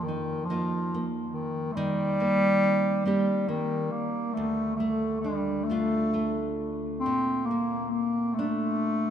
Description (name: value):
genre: celtic folk, Celtic slow air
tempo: 46 BPM (dotted quarters)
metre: 6/8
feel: rubato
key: unclear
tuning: A4 = 441 Hz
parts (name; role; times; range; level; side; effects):
- warm bass clarinet; melody; 0.0-9.1 s; Eb3 to C4; -26 LUFS; equal; none
- nylon-string guitar; accompaniment; 0.0-9.1 s; D2 to G4; -31 LUFS; equal; none
room: wet cathedral reverb, RT60 6.8 s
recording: minimal, uncompressed stereo recording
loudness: -25 LUFS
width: side -9 dB against mid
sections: 0.0-9.1 A section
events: none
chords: 0.0 F7sus4; 1.8 Eb6; 4.4 Dm; 7.1 Bbmaj7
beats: 0.51 | 1.79 3.08 | 4.38 5.70 | 7.05 8.38